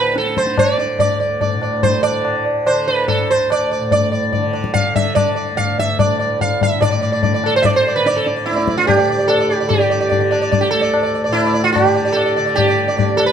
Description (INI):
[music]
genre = indian classical, Hindustani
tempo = 145 BPM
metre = 7/4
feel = straight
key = D raga bhimpalasi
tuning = A4 = 440 Hz
[part]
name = sitar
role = melody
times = 0.0-13.3 s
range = E4 to F5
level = -16 LUFS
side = right 3 dB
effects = none
[part]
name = tanpura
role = drone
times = 0.0-13.3 s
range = D2 to D3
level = -25 LUFS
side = left 1 dB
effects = none
[part]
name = tabla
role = percussion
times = 0.2-13.3 s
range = none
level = -19 LUFS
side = left 5 dB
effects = none
[sound]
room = light reverb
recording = close, detailed microphones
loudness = -14 LUFS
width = side -8 dB against mid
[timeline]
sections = 0.0-6.8 A section; 6.8-13.3 B section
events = none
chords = none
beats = 0.16 0.58 | 0.99 1.41 1.83 2.25 2.67 3.08 3.50 | 3.92 4.33 4.75 5.17 5.58 5.99 6.41 | 6.82 7.24 7.65 8.06 8.47 8.89 9.30 | 9.71 10.12 10.53 10.94 11.35 11.76 12.17 | 12.58 12.99